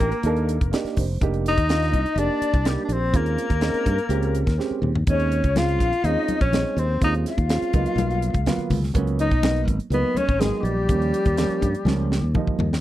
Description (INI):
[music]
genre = electric jazz fusion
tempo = 124 BPM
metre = 4/4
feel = straight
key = unclear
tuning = A4 = 440 Hz
[part]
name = warm tenor saxophone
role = melody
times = 0.0-12.3 s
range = G3 to F4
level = -25 LUFS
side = equal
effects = none
[part]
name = bright silver concert flute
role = second line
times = 0.0-12.3 s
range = G4 to F5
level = -30 LUFS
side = left 13 dB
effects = none
[part]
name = dark baby grand piano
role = accompaniment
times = 0.0-12.7 s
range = F3 to G5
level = -28 LUFS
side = right 7 dB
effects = none
[part]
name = modern bright fingered electric bass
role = bass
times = 0.0-12.8 s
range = F1 to G2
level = -24 LUFS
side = equal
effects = none
[part]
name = tight funk drum kit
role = drums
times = 0.0-12.8 s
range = hi-hat, kick drum, snare drum, toms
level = -24 LUFS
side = equal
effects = none
[part]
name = congas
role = percussion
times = 5.1-12.7 s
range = none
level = -29 LUFS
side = left 4 dB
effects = none
[sound]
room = little or no reverb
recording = dry, close 1970s-style studio recording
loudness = -19 LUFS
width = side -14 dB against mid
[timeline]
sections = 0.0-12.8 A section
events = grand piano fill 0.0-1.2; drum fill 4.6-5.1, 11.9-12.8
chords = 0.0 F13sus4; 3.1 Eb13sus4; 7.7 Db13sus4; 10.9 Eb7